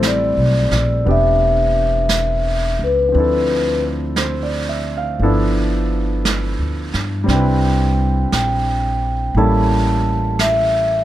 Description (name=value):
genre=jazz ballad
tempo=58 BPM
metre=4/4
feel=swing 66% on 8ths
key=unclear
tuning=A4 = 441 Hz
part: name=vibraphone with soft mallets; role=melody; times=0.0-11.0 s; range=B4 to A5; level=-18 LUFS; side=left 1 dB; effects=none
part: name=clear concert grand piano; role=accompaniment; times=0.0-11.0 s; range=F3 to F5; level=-21 LUFS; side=right 1 dB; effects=none
part: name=upright bass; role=bass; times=0.0-11.0 s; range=E1 to G2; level=-19 LUFS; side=equal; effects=none
part: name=vintage brush drum kit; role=drums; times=0.0-11.0 s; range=brushed snare drum, hi-hat, snare drum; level=-25 LUFS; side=right 3 dB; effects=none
room=little or no reverb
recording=none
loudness=-15 LUFS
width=side -13 dB against mid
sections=0.0-11.0 A section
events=none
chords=0.0 Am9; 3.1 Dm9; 5.2 G13; 7.3 Cmaj9; 9.4 A7b9